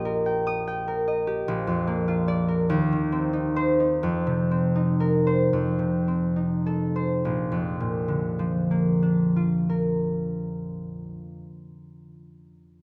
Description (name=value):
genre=classical, solo harp piece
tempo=32-51 BPM (dotted quarters)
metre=6/8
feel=rubato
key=Bb major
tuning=A4 = 436 Hz
part: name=concert harp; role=solo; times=0.0-12.2 s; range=Bb1 to Eb6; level=-25 LUFS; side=equal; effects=none
room=moderate scoring stage reverb, RT60 1.6 s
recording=close, detailed microphones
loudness=-25 LUFS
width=mono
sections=0.0-7.3 A section; 7.3-10.6 B section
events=slowing down 0.3-7.3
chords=0.0 Eb/Bb; 1.5 Bb; 2.7 Cm/Eb; 4.0 F7sus4; 5.5 F7; 7.3 Bb